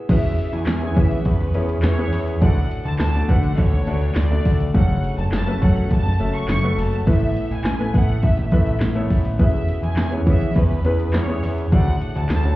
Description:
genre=piano-driven pop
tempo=103 BPM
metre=4/4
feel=straight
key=unclear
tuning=A4 = 440 Hz
part: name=clear concert grand piano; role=accompaniment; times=0.0-12.6 s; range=A2 to E5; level=-25 LUFS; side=left 2 dB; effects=none
part: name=glass harmonica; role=sustained chords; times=0.0-12.6 s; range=D4 to C#6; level=-37 LUFS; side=left 2 dB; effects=none
part: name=dark studio violin section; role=melody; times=0.1-12.6 s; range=B4 to C#6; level=-30 LUFS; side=equal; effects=none
part: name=fat analog bass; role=bass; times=0.1-12.5 s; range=F#1 to E3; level=-20 LUFS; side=equal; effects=none
part: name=deep house drum kit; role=drums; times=0.1-12.6 s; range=crash cymbal, handclaps, hi-hat, kick drum, ride cymbal, snare drum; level=-20 LUFS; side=equal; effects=overdrive
part: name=tambourine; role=percussion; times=0.7-12.4 s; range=none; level=-54 LUFS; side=right 4 dB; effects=none
room=little or no reverb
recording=heard muffled through a wall, club reverb, EQ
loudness=-17 LUFS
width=side -17 dB against mid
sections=0.1-12.6 A section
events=none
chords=0.1 E6; 2.4 D; 4.7 F#m; 7.1 Asus2; 9.4 E6; 11.7 D

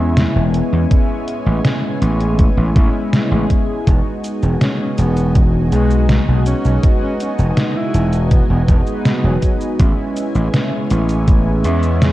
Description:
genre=vaporwave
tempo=81 BPM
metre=4/4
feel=straight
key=E major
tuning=A4 = 440 Hz
part: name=mellow synth brass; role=accompaniment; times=0.0-12.1 s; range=G#3 to D#5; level=-21 LUFS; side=equal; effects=lush chorus, cassette tape, tape echo
part: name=lush unison pad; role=sustained chords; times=0.0-12.1 s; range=G#3 to G#5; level=-30 LUFS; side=left 1 dB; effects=chorus, phaser, vintage 12-bit sampler grit
part: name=gritty slap bass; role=bass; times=0.0-12.1 s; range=E1 to E2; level=-15 LUFS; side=equal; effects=overdrive
part: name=detuned 8-bit digital drum machine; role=drums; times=0.2-12.1 s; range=cabasa, hi-hat, snare drum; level=-19 LUFS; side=equal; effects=vintage 12-bit sampler grit
part: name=electronic kick drum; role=drums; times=0.9-11.4 s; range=none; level=-14 LUFS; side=equal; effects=vintage 12-bit sampler grit
part: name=warm alto saxophone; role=melody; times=4.6-9.5 s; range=F#3 to E4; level=-25 LUFS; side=equal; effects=tape echo
room=light reverb, digital ambience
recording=dark, warm production, cassette tape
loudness=-13 LUFS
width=side -16 dB against mid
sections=0.0-12.1 A section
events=none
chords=0.0 Amaj7; 3.9 Emaj9; 9.8 Amaj7

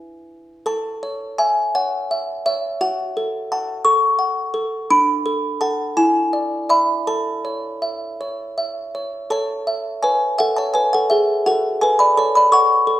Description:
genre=classical, lullaby for music box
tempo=53-59 BPM (dotted quarters)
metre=6/8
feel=rubato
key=A major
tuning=A4 = 445 Hz
part: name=music box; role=solo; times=0.0-13.0 s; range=D4 to C#6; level=-17 LUFS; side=equal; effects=none
room=moderate recital hall reverb, RT60 1.2 s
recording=none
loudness=-17 LUFS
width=side -13 dB against mid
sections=0.0-9.3 A section; 9.3-13.0 A section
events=none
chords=0.0 E5; 0.7 A; 2.8 F#m; 4.9 D; 6.0 E7; 7.1 A; 11.5 F#m

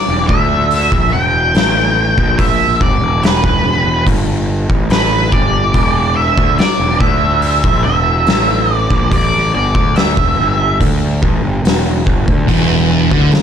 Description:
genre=stoner and doom metal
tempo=71 BPM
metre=4/4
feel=straight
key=E minor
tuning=A4 = 439 Hz
part: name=octave-fuzz lead guitar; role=melody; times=0.0-10.8 s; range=B4 to G5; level=-15 LUFS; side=right 1 dB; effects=wah, distortion
part: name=fuzz picked electric bass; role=bass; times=0.1-13.3 s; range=E1 to D2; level=-16 LUFS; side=equal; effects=overdrive
part: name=oversized low-tuned drum kit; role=drums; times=0.3-13.4 s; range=hi-hat, kick drum, snare drum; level=-15 LUFS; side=equal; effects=none
part: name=tonewheel organ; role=sustained chords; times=12.5-13.4 s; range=E3 to B4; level=-24 LUFS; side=left 2 dB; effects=slow rotary speaker, chorus vibrato
part: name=thick fuzz guitar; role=riff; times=12.5-13.4 s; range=E2 to D3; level=-14 LUFS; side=left 10 dB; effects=distortion
part: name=thick fuzz guitar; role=riff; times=12.5-13.3 s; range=E2 to D3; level=-14 LUFS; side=right 13 dB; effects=distortion
room=small room ambience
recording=dark, warm production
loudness=-11 LUFS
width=side -8 dB against mid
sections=0.0-13.4 A section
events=none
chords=0.0 Em

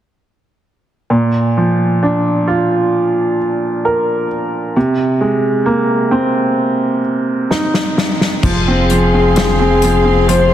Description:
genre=pop ballad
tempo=65 BPM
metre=4/4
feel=straight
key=unclear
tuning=A4 = 439 Hz
part: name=bright upright piano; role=accompaniment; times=1.1-10.5 s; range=Bb2 to Bb4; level=-13 LUFS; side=right 1 dB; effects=none
part: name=unplugged drum kit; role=drums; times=7.5-10.5 s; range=crash cymbal, hi-hat, kick drum, snare drum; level=-17 LUFS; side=left 2 dB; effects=none
part: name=bright studio string section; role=sustained chords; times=8.4-10.5 s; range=Ab4 to C6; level=-21 LUFS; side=equal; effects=none
part: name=sub bass with octave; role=bass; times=8.4-10.5 s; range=F1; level=-16 LUFS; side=left 1 dB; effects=none
part: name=breathy flugelhorn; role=melody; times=8.9-10.5 s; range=Ab4 to C5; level=-14 LUFS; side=left 3 dB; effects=none
room=moderate concert hall reverb, RT60 2.1 s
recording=heavily compressed radio sound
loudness=-12 LUFS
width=side -11 dB against mid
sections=1.1-8.4 A section; 8.4-10.5 B section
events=drum fill 7.5-8.4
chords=1.1 Bb; 4.8 Abadd9/C; 8.4 Fm

